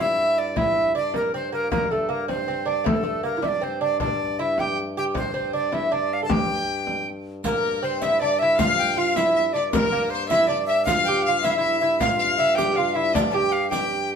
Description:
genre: medieval dance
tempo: 105 BPM (dotted quarters)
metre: 6/8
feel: straight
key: G dorian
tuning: A4 = 440 Hz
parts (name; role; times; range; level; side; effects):
- bright reedy tenor recorder; melody; 0.0-14.1 s; A4 to A5; -23 LUFS; equal; none
- lute; second line; 0.0-14.1 s; A3 to A4; -26 LUFS; right 4 dB; none
- hand-pumped harmonium; drone; 0.0-14.2 s; G2; -33 LUFS; left 2 dB; none
- frame drum; percussion; 0.2-14.0 s; none; -28 LUFS; left 2 dB; none
- riq; percussion; 7.4-13.9 s; none; -34 LUFS; right 1 dB; none
- rich viola da gamba; second line; 7.5-14.1 s; G4 to F5; -26 LUFS; left 4 dB; none
room: wet studio reverb, RT60 0.8 s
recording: band playing live in one room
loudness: -20 LUFS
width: side -6 dB against mid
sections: 0.0-7.4 A section; 7.4-14.2 A section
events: none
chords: none

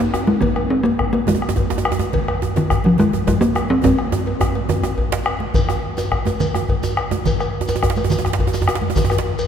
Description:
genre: west african traditional, West African drum ensemble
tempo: 140 BPM (dotted quarters)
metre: 12/8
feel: straight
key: Ab major pentatonic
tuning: A4 = 440 Hz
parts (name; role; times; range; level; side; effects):
- talking drum; melody; 0.0-4.7 s; Eb3 to C4; -20 LUFS; equal; none
- bombo; percussion; 0.1-9.5 s; none; -23 LUFS; left 1 dB; none
- cowbell; percussion; 0.1-9.5 s; none; -28 LUFS; left 2 dB; none
- djembe; percussion; 0.1-9.5 s; none; -28 LUFS; left 4 dB; none
- djembe; percussion; 0.1-9.3 s; none; -23 LUFS; right 4 dB; none
- congas; percussion; 0.3-9.1 s; none; -28 LUFS; right 4 dB; none
- shekere; percussion; 5.5-9.5 s; none; -31 LUFS; left 1 dB; none
room: wet cathedral reverb, RT60 6.1 s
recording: recorded in a church or concert hall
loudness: -16 LUFS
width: side -8 dB against mid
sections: 0.0-5.5 A section; 5.5-9.5 B section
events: drum fill 3.8-5.5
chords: none

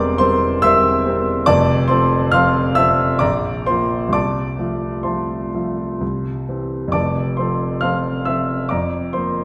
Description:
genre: classical, romantic character piece for solo piano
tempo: 64-73 BPM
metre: 3/4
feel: rubato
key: F major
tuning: A4 = 441 Hz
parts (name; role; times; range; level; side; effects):
- warm grand piano; solo; 0.0-9.4 s; E1 to F6; -18 LUFS; equal; none
room: wet recital hall reverb, RT60 1.6 s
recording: heard from further back in the room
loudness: -18 LUFS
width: mono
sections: 0.0-9.4 A section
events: none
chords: 0.0 C7/E; 1.5 F; 3.2 Bb; 4.1 F/C; 6.0 C; 6.9 F; 8.7 Bb/F

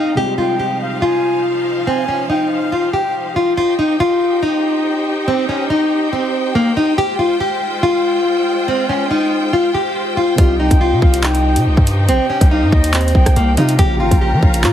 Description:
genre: hip hop, drill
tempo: 141 BPM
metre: 4/4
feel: half-time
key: C minor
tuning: A4 = 438 Hz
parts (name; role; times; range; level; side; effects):
- nylon-string guitar; melody; 0.0-14.7 s; Bb3 to G4; -16 LUFS; left 1 dB; none
- silver concert flute; second line; 0.0-3.1, 10.6-14.7 s; Eb5 to Bb5; -23 LUFS; equal; tape echo
- dark concert grand piano; accompaniment; 0.0-3.6, 10.4-14.7 s; C3 to G4; -26 LUFS; right 2 dB; none
- clear symphonic string section; sustained chords; 0.0-14.7 s; F3 to Bb5; -24 LUFS; equal; none
- distorted 808-style bass; bass; 10.4-14.7 s; Ab1 to F3; -16 LUFS; equal; distortion
- drill drum kit; drums; 10.4-14.7 s; handclaps, hi-hat, kick drum, rim click; -13 LUFS; equal; none
room: light reverb, small room reverb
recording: heavily compressed radio sound, multiband compression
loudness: -13 LUFS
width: side -10 dB against mid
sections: 0.0-3.6 A section; 3.6-14.7 B section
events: none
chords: 0.2 Fmadd9; 3.6 Cm; 7.0 Fmadd9; 10.4 Cm; 13.8 Bbm

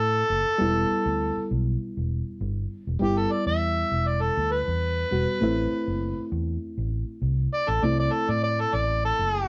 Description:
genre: straight-eighth soul blues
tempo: 100 BPM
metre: 4/4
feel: straight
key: E minor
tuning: A4 = 443 Hz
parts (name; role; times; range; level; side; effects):
- overdriven harmonica; melody; 0.0-9.5 s; G4 to E5; -28 LUFS; equal; none
- reed electric piano; accompaniment; 0.0-9.5 s; G3 to F#4; -32 LUFS; equal; none
- vintage muted fingered electric bass; bass; 0.0-9.4 s; E1 to A2; -30 LUFS; equal; none
room: moderate studio reverb, RT60 0.5 s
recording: band playing live in one room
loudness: -26 LUFS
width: mono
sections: 0.0-9.5 A section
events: harmonica solo 0.0-9.5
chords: 0.0 Am; 0.6 Em; 5.4 Am

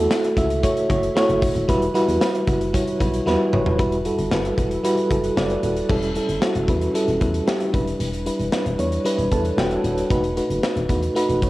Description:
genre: 1980s-style pop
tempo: 114 BPM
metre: 4/4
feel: straight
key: E dorian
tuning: A4 = 436 Hz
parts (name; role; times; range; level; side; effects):
- FM electric piano with soft pad layer; accompaniment; 0.0-11.5 s; G3 to A5; -20 LUFS; equal; chorus, tremolo, cassette tape
- solid FM bass; bass; 0.0-11.5 s; D#1 to E2; -26 LUFS; equal; none
- modern studio drum kit; drums; 0.1-11.5 s; crash cymbal, hi-hat, kick drum, snare drum, tambourine, toms; -24 LUFS; equal; cassette tape
room: moderate spring reverb, RT60 2.0 s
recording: home recording on cassette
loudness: -18 LUFS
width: side -17 dB against mid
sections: 0.0-3.8 A section; 3.8-5.9 B section; 5.9-11.5 C section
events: drum fill 3.3-3.8; FM electric piano fill 9.1-10.1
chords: 0.0 F#m7; 1.7 Emadd9; 5.9 A7/E; 7.7 Em7; 10.1 B7/E

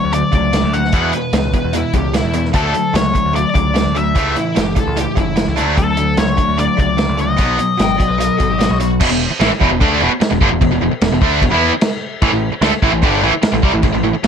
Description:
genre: classic rock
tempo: 149 BPM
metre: 4/4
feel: straight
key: unclear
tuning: A4 = 439 Hz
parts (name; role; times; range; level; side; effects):
- octave-fuzz lead guitar; melody; 0.0-8.8 s; A4 to F#5; -18 LUFS; left 4 dB; wah, distortion
- biting overdriven guitar; riff; 0.0-14.3 s; E2 to E4; -20 LUFS; left 13 dB; none
- distorted electric guitar; riff; 0.0-14.3 s; E2 to E4; -20 LUFS; right 13 dB; overdrive
- growling picked electric bass; bass; 0.0-14.3 s; E1 to E2; -20 LUFS; equal; overdrive
- vintage drum kit; drums; 0.1-14.3 s; crash cymbal, hi-hat, kick drum, snare drum; -18 LUFS; equal; none
- lead guitar through a small cranked amp; second line; 1.2-8.9 s; E4 to G5; -22 LUFS; left 3 dB; overdrive
- distorted electric guitar; riff; 9.0-14.3 s; E2 to E4; -19 LUFS; right 2 dB; overdrive
room: light reverb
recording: none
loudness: -13 LUFS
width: side -7 dB against mid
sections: 0.0-9.0 A section; 9.0-14.3 B section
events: none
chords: 0.0 D; 0.9 E; 2.5 D; 4.2 A; 5.6 D; 7.4 B; 9.0 E5; 12.2 A5

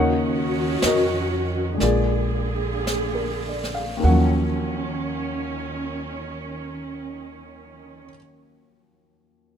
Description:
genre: jazz ballad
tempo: 48-67 BPM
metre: 4/4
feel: swing 66% on 8ths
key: unclear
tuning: A4 = 440 Hz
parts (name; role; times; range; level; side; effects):
- dark baby grand piano; accompaniment; 0.0-9.6 s; Eb2 to Gb5; -25 LUFS; left 2 dB; none
- warm symphonic string section; sustained chords; 0.0-8.0 s; D3 to Ab4; -28 LUFS; right 1 dB; none
- upright bass; bass; 0.0-8.1 s; Bb1 to F2; -25 LUFS; right 1 dB; none
- jazz brush drum kit; drums; 0.8-5.0 s; brushed snare drum, hi-hat, snare drum; -30 LUFS; right 2 dB; none
room: little or no reverb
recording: minimal, uncompressed stereo recording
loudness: -21 LUFS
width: side -8 dB against mid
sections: 0.0-4.0 A section; 4.0-8.9 B section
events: slowing down 0.0-4.0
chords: 0.0 Ebm7; 1.8 Bb7; 4.0 Ebm7

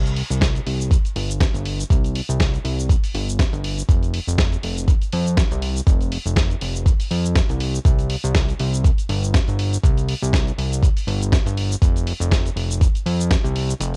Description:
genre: nu-disco, nu disco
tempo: 121 BPM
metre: 4/4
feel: swing 55% on 16ths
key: unclear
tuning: A4 = 440 Hz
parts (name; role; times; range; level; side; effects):
- fat analog bass; bass; 0.0-14.0 s; F1 to F2; -24 LUFS; equal; tube saturation, sidechain pumping
- dusty soul sampler-style drum kit; drums; 0.1-14.0 s; hi-hat, shaker, snare drum; -29 LUFS; equal; cassette tape
- electronic kick drum; drums; 0.4-13.4 s; none; -20 LUFS; equal; cassette tape
room: little or no reverb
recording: home recording on cassette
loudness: -20 LUFS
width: mono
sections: 0.0-14.0 A section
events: break 13.8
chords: none

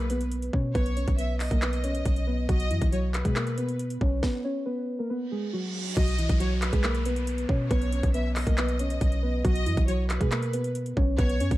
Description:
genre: hip hop, trap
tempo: 138 BPM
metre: 4/4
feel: half-time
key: B major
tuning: A4 = 440 Hz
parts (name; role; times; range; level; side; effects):
- muted felt-like synth keys; melody; 0.0-11.6 s; E3 to C#5; -30 LUFS; equal; chorus, digital delay
- warm studio violin section; second line; 0.0-11.6 s; B4 to E5; -36 LUFS; left 1 dB; digital delay
- warm 808-style bass; bass; 0.0-11.6 s; B1 to B2; -27 LUFS; equal; none
- trap drum kit; drums; 0.1-11.6 s; crash cymbal, handclaps, hi-hat, kick drum, snare drum; -28 LUFS; equal; overdrive
- reverse cymbal and downlifter; sound effects; 5.3-9.4 s; none; -40 LUFS; right 2 dB; none
room: digital ambience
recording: dark, warm production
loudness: -24 LUFS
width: side -16 dB against mid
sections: 0.0-6.0 A section; 6.0-11.6 B section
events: stop 4.2-6.0; reverse cymbal 5.3-6.0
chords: 0.0 Bsus2

